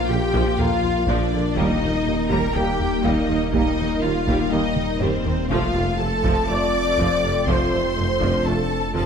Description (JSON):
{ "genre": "cinematic, hybrid orchestral and electronic film score", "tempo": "122 BPM", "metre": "4/4", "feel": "straight", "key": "unclear", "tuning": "A4 = 440 Hz", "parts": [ { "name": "rich chamber violin section", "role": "melody", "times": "0.0-9.1 s", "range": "C5 to D6", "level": "-31 LUFS", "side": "left 5 dB", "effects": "none" }, { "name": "rich symphonic violin section", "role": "second line", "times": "0.0-9.1 s", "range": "C5 to D6", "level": "-30 LUFS", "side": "left 3 dB", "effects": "none" }, { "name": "rich symphonic viola section", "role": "accompaniment", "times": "0.0-9.1 s", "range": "C3 to Bb3", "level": "-28 LUFS", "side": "right 1 dB", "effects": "none" }, { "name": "dark analog pad", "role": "sustained chords", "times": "0.0-9.1 s", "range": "F3 to Bb4", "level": "-27 LUFS", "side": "left 2 dB", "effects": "chorus, phaser" }, { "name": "mellow French horn section", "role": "sustained chords", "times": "0.0-9.1 s", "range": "C4 to D5", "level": "-28 LUFS", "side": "left 4 dB", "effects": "none" }, { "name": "dark detuned saw bass", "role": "bass", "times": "0.0-9.1 s", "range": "Eb1 to Bb1", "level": "-29 LUFS", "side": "equal", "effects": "none" }, { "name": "rich symphonic cello section", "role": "bass", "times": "0.0-9.1 s", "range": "C4 to D5", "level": "-27 LUFS", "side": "right 2 dB", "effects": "none" }, { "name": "bright concert grand piano", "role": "texture", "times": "0.0-9.1 s", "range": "D4 to F5", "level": "-36 LUFS", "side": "left 2 dB", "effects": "none" }, { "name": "rich symphonic double bass section", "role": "bass", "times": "0.1-9.0 s", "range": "Bb1 to F2", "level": "-29 LUFS", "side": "right 3 dB", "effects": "none" }, { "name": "warm tuba", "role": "bass", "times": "0.1-9.0 s", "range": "F1 to Eb2", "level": "-29 LUFS", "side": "right 4 dB", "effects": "none" }, { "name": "taiko ensemble", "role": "drums", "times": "0.3-9.1 s", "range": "none", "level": "-28 LUFS", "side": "equal", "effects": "none" }, { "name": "clear trombone section", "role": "sustained chords", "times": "0.6-8.6 s", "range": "F3 to Bb3", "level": "-32 LUFS", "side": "right 4 dB", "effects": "none" } ], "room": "wet scoring stage reverb, RT60 1.7 s", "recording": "none", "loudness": "-18 LUFS", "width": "side -7 dB against mid", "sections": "0.0-9.1 A section", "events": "drum fill 4.8-5.5", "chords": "0.0 Bb; 1.6 Eb; 5.5 F" }